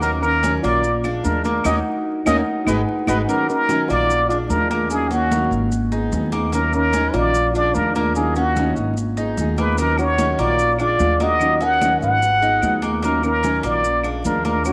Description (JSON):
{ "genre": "latin, Cuban son and guajira", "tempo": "148 BPM", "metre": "4/4", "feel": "straight", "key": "Eb minor", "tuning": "A4 = 443 Hz", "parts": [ { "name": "trumpet with plunger mute", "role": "melody", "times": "0.0-14.7 s", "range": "Gb4 to Gb5", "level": "-22 LUFS", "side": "equal", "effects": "none" }, { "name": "concert harp", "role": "second line", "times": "0.0-14.7 s", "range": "Bb3 to Cb5", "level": "-28 LUFS", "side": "equal", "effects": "none" }, { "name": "fingerpicked plugged-in steel-string acoustic guitar", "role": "accompaniment", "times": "0.0-14.7 s", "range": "Eb3 to Bb4", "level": "-29 LUFS", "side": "equal", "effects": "none" }, { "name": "Cuban tres", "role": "arpeggios", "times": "0.0-14.7 s", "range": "Ab3 to Eb4", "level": "-30 LUFS", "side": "equal", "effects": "none" }, { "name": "upright bass", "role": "bass", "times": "0.0-14.7 s", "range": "Ab1 to Eb2", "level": "-27 LUFS", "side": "equal", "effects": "transformer saturation" }, { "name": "congas", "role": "percussion", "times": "0.0-14.7 s", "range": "none", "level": "-30 LUFS", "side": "equal", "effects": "none" }, { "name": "maracas", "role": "percussion", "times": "0.0-14.7 s", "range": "none", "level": "-40 LUFS", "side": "equal", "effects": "none" }, { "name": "claves", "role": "percussion", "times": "0.2-3.2, 10.0-14.7 s", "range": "none", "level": "-36 LUFS", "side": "equal", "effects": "none" } ], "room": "wet spring reverb, RT60 2.0 s", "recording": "vinyl crackle", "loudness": "-19 LUFS", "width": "mono", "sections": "0.0-3.3 A section; 3.3-14.7 A section", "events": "band accent 1.7-3.3", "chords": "0.0 Ebm7; 0.8 Bb7; 1.7 Ebm7; 2.5 Abm7; 3.3 Ebm7; 4.1 Bb7; 4.9 Ebm7; 5.7 Abm7; 6.5 Ebm7; 7.3 Bb7; 8.2 Ebm7; 9.0 Abm7; 9.8 Ebm7; 10.6 Bb7; 11.4 Ebm7; 12.2 Abm7; 13.0 Ebm7; 13.8 Bb7", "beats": "| 0.03 0.43 0.84 1.25 | 1.65 2.06 2.47 2.87 | 3.28 3.69 4.09 4.50 | 4.91 5.31 5.72 6.12 | 6.53 6.93 7.34 7.75 | 8.15 8.56 8.96 9.37 | 9.78 10.18 10.59 10.99 | 11.40 11.81 12.21 12.62 | 13.03 13.43 13.84 14.25 | 14.65" }